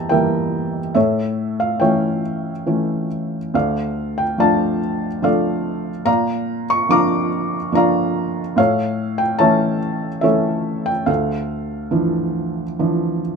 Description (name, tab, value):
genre	classical, lyrical solo piano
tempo	71 BPM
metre	3/4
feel	rubato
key	D harmonic minor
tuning	A4 = 440 Hz
part	felt-muted upright piano	solo	0.0-13.4 s	D2 to D6	-17 LUFS	equal	none
room	light reverb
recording	minimal, uncompressed stereo recording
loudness	-17 LUFS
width	side -5 dB against mid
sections	0.0-13.4 A section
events	none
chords	0.0 Edim; 1.0 A; 3.5 Dm; 6.1 Bb; 8.6 A; 11.1 Dmadd9